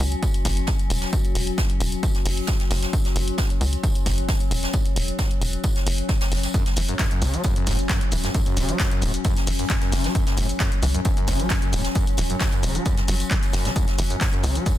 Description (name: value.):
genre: driving peak-time techno.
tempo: 133 BPM.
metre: 4/4.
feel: straight.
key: unclear.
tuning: A4 = 437 Hz.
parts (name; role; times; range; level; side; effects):
tight sequencer bass; bass; 0.0-14.6 s; E1 to C#2; -24 LUFS; equal; sidechain pumping.
metallic inharmonic drone; drone; 0.0-14.8 s; F#3 to C#4; -30 LUFS; left 4 dB; chorus, built-in reverb, sidechain pumping.
jazz brush drum kit; drums; 0.0-14.8 s; hi-hat, snare drum, tambourine; -34 LUFS; right 2 dB; high-pass filter on hats, soft clipping on snare, high-pass filter on snare, high-pass filter on perc, high-pass filter on room.
punchy analog drum machine; drums; 0.0-14.8 s; handclaps, hi-hat, shaker; -30 LUFS; equal; none.
electronic kick drum; drums; 0.2-14.8 s; none; -23 LUFS; equal; none.
screaming distorted acid line; riff; 6.5-14.7 s; F#2 to F#3; -29 LUFS; equal; distortion, wide subtle chorus, sidechain pumping, ping-pong delay.
room: little or no reverb.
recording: dense, heavily limited modern master.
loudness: -20 LUFS.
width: side -13 dB against mid.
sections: 0.0-14.8 A section.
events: none.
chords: 0.0 F#5.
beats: 0.23 0.68 | 1.13 1.58 2.03 2.48 | 2.93 3.38 3.83 4.29 | 4.74 5.19 5.64 6.09 | 6.54 6.99 7.44 7.89 | 8.35 8.80 9.25 9.70 | 10.15 10.60 11.05 11.50 | 11.96 12.41 12.86 13.31 | 13.76 14.21 14.66.